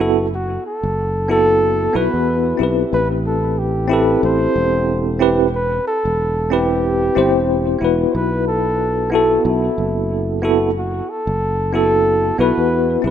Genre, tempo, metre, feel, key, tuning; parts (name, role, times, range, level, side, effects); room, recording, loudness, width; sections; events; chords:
sunset chillout; 92 BPM; 4/4; swing 58% on 16ths; A4 = 440 Hz
bell-like tine electric piano; accompaniment; 0.0-13.1 s; B3 to C5; -17 LUFS; moving between left 6 dB and right 5 dB; fast stereo tremolo, auto-pan
sustaining fretless electric bass; bass; 0.0-13.1 s; E1 to E2; -22 LUFS; equal
breathy flugelhorn; melody; 0.3-13.0 s; E4 to C5; -20 LUFS; equal; tape echo
moderate lush hall reverb, RT60 2.5 s; rough home demo mix; -15 LUFS; side -9 dB against mid
0.0-13.1 A section
0.0 B7sus4; 2.9 Am7; 8.1 B7sus4